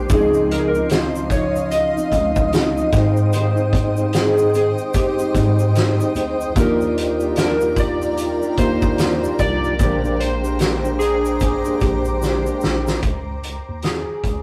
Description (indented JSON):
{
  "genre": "indie pop, bedroom pop",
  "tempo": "74 BPM",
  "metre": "4/4",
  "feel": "swing 60% on 16ths",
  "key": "unclear",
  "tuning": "A4 = 440 Hz",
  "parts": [
    { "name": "warbly lo-fi synth keys", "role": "melody", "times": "0.0-14.4 s", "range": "G4 to Eb5", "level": "-24 LUFS", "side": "equal", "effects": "chorus" },
    { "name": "fingerpicked plugged-in steel-string acoustic guitar", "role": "accompaniment", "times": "0.0-13.0 s", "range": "Ab2 to G4", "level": "-28 LUFS", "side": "equal", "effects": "warbly pitch drift" },
    { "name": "mellow tonewheel organ", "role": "accompaniment", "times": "0.0-13.0 s", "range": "F3 to G5", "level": "-26 LUFS", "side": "equal", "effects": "chorus vibrato, stopped rotary speaker" },
    { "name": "granular cloud pad", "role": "sustained chords", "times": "0.0-13.0 s", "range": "Bb4 to Eb6", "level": "-32 LUFS", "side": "equal", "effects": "built-in reverb" },
    { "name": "mellow tine electric piano", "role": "bass", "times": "0.1-14.4 s", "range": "Bb1 to Ab2", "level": "-25 LUFS", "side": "equal", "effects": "none" },
    { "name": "loose indie drum kit", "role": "drums", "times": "0.1-14.4 s", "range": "hi-hat, kick drum, snare drum", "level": "-24 LUFS", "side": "equal", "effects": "none" },
    { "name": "tube shaker", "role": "percussion", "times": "0.1-13.0 s", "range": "none", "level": "-42 LUFS", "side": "equal", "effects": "none" }
  ],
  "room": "wet booth ambience, RT60 0.2 s",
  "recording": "rough rehearsal-room recording, warm saturation",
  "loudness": "-19 LUFS",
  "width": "mono",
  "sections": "0.0-13.0 A section; 13.0-14.4 B section",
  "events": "drum fill 12.2-13.0",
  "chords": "0.1 Dbmaj9; 2.9 Abmaj7; 6.6 Ebmaj9; 9.8 Bb13; 13.0 Dbsus2"
}